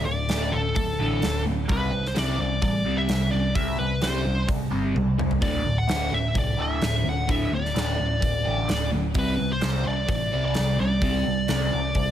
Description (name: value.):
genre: hard rock.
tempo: 129 BPM.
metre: 4/4.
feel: straight.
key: unclear.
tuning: A4 = 440 Hz.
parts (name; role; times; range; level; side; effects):
high-gain lead guitar; melody; 0.0-12.1 s; A4 to F#5; -28 LUFS; equal; distortion.
crunchy overdriven guitar; riff; 0.0-12.1 s; D2 to C4; -26 LUFS; equal; phaser.
picked electric bass; bass; 0.0-12.1 s; D1 to C2; -28 LUFS; equal; none.
huge arena drum kit; drums; 0.3-12.1 s; hi-hat, kick drum, snare drum, toms; -29 LUFS; equal; none.
room: light reverb.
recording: none.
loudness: -22 LUFS.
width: side -10 dB against mid.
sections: 0.0-12.1 A section.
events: drum fill 5.0-5.4.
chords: 0.0 D5; 1.7 C5; 5.4 D5; 9.2 Csus2.